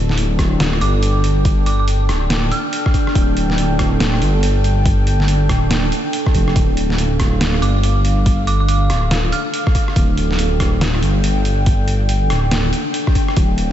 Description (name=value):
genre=deep dubstep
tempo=141 BPM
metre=4/4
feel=swing 62% on 16ths, half-time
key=D minor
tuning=A4 = 440 Hz
part: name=deep dark ambient pad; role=sustained chords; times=0.0-13.7 s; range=D4 to G5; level=-22 LUFS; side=equal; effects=chorus, built-in reverb
part: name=dark detuned saw bass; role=bass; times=0.0-13.7 s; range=D1 to G1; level=-16 LUFS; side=equal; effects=none
part: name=trip hop sampler-style drum kit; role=drums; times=0.1-13.7 s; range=hi-hat, rim click, snare drum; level=-22 LUFS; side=equal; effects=none
part: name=electronic kick drum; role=drums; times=0.4-13.5 s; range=none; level=-16 LUFS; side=equal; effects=overdrive
part: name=dark detuned synth bell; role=melody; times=0.8-2.9, 7.6-9.7 s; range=D6 to F6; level=-27 LUFS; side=right 3 dB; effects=chorus, phaser, dub echo
room=light reverb, digital ambience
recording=nothing above 7.9 kHz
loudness=-14 LUFS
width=side -11 dB against mid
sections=0.0-13.7 A section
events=none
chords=0.0 Dm